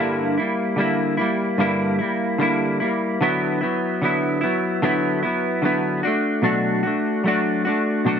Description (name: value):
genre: indie pop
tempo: 74 BPM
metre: 4/4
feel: swing 55% on 16ths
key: unclear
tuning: A4 = 440 Hz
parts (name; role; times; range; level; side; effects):
- semi-hollow electric guitar; solo; 0.0-8.2 s; G2 to F#4; -19 LUFS; equal; analog chorus, warbly pitch drift
room: moderate small room reverb, RT60 0.5 s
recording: nothing above 10.9 kHz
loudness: -19 LUFS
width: side -7 dB against mid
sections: 0.0-8.2 A section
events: none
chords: 0.0 Gm6; 3.2 D69; 6.0 Bm7